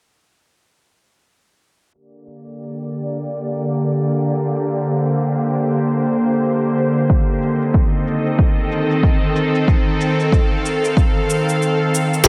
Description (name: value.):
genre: organic downtempo.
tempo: 93 BPM.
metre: 4/4.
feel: swing 59% on 16ths.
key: G minor.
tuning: A4 = 439 Hz.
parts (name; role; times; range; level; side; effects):
bowed-like drone; sustained chords; 2.5-12.3 s; D3 to F5; -20 LUFS; equal; built-in reverb, sidechain pumping.
shaker; drums; 1.9-12.2 s; none; -31 LUFS; equal; overdrive.
electronic kick drum; drums; 7.1-12.3 s; none; -18 LUFS; equal; overdrive.
room: moderate plate reverb, RT60 3.1 s.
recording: dreamy mix soaked in reverb, low-pass filter.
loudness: -18 LUFS.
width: mono.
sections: 1.9-12.3 A section.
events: filter sweep 1.9-12.3; kick drops out 11.6-12.3.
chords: 1.9 Gm; 7.1 Adim.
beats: | 1.94 2.59 3.23 3.88 | 4.52 5.17 5.81 6.46 | 7.10 7.75 8.39 9.04 | 9.68 10.33 10.97 11.62 | 12.26.